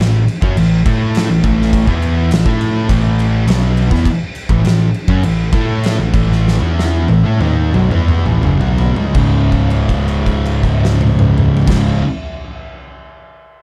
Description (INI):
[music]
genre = stoner and doom metal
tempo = 81-103 BPM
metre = 4/4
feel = straight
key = C# minor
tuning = A4 = 442 Hz
[part]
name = distorted electric guitar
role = riff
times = 0.0-12.0 s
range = C#2 to A4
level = -26 LUFS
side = equal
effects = overdrive
[part]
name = thick fuzz guitar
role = riff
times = 0.0-12.0 s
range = C#2 to A4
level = -20 LUFS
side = equal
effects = distortion
[part]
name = thick fuzz guitar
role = riff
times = 0.0-12.0 s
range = C#2 to A4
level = -21 LUFS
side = equal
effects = distortion
[part]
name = overdriven picked electric bass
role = bass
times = 0.0-12.0 s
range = C#1 to A2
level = -19 LUFS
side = equal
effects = none
[part]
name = oversized low-tuned drum kit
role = drums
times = 0.0-11.9 s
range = crash cymbal, kick drum, snare drum, toms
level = -20 LUFS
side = equal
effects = none
[sound]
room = little or no reverb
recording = dark, warm production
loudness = -14 LUFS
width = mono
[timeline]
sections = 0.0-9.2 A section; 9.2-12.1 B section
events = slowing down 4.1-9.2; drum fill 6.4-9.2; held note 9.2-11.7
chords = 0.0 A5; 9.2 C#5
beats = 0.57 1.15 | 1.73 2.31 2.90 3.48 | 4.06 4.64 5.23 5.83 | 6.45 7.08 7.74 8.43 | 9.15 9.90 10.64 11.38